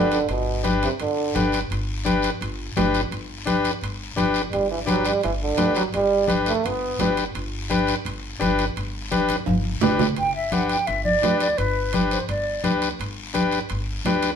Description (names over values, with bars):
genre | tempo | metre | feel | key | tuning
latin, cumbia | 170 BPM | 4/4 | straight | G major | A4 = 444 Hz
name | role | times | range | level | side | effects
bright trombone | second line | 0.0-1.5, 4.5-7.2 s | B2 to B3 | -23 LUFS | right 4 dB | none
overdriven combo organ | accompaniment | 0.0-14.3 s | D4 to B4 | -24 LUFS | left 4 dB | none
upright bass | bass | 0.0-14.3 s | G1 to D2 | -30 LUFS | equal | none
guiro | percussion | 0.1-14.4 s | none | -34 LUFS | left 5 dB | none
timbales | percussion | 0.1-14.4 s | none | -30 LUFS | right 8 dB | none
congas | percussion | 0.7-14.2 s | none | -27 LUFS | left 1 dB | none
mellow silver concert flute | melody | 10.2-12.8 s | B4 to G5 | -23 LUFS | right 1 dB | none
room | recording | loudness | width
wet studio reverb, RT60 0.7 s | band playing live in one room | -20 LUFS | side -7 dB against mid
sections
0.0-10.2 A section; 10.2-14.4 B section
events
trombone solo 0.0-10.2; drum fill 9.3-10.2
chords
0.0 G